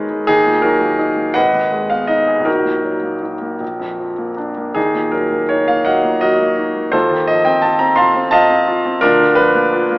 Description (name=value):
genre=classical, romantic character piece for solo piano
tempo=52-58 BPM (dotted quarters)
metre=6/8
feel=rubato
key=Eb minor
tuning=A4 = 444 Hz
part: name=clear grand piano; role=solo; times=0.0-10.0 s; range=Ab1 to C6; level=-13 LUFS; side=equal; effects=none
room=moderate scoring stage reverb, RT60 1.6 s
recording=AM radio sound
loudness=-13 LUFS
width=side -22 dB against mid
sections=0.0-10.0 A section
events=none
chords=0.3 Ebm; 1.4 Abm; 2.5 Ebm/Bb; 3.6 Bb; 4.8 Ebm; 6.9 F7/Eb; 9.0 Bb/D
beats=| 0.28 1.35 | 2.47 3.61 | 4.76 5.86 | 6.94 7.98 | 9.03